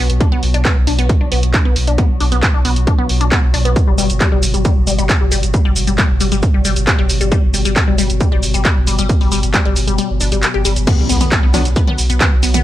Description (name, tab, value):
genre	driving peak-time techno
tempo	135 BPM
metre	4/4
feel	straight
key	unclear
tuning	A4 = 442 Hz
part	resonant blip pluck	riff	0.0-12.6 s	G3 to G4	-20 LUFS	left 3 dB	phaser, sidechain pumping, dub echo
part	saturated sub bass	bass	0.0-12.6 s	G1 to B1	-17 LUFS	equal	overdrive, sidechain pumping, low-pass filter
part	metallic inharmonic drone	drone	0.0-12.6 s	B2 to F#3	-24 LUFS	equal	chorus, built-in reverb, sidechain pumping
part	punchy analog drum machine	drums	0.1-12.6 s	crash cymbal, handclaps, hi-hat, shaker, toms	-19 LUFS	equal	sidechain pumping on hats, sidechain pumping on perc, sidechain pumping on toms, sidechain pumping on cymbals
part	electronic kick drum	drums	0.2-12.3 s	none	-14 LUFS	equal	overdrive
part	impact	sound effects	10.9-12.6 s	none	-24 LUFS	equal	none
part	rave stab	stabs	11.5-11.6 s	F#3 to D4	-23 LUFS	left 1 dB	chorus, built-in reverb, sidechain pumping, dub echo
room	digital ambience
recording	none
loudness	-12 LUFS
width	side -14 dB against mid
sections	0.0-10.9 A section; 10.9-12.6 B section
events	kick drops out 10.0-10.9; drop 10.9-12.6; impact 10.9-12.6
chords	0.0 Bm; 3.8 G5; 10.9 B5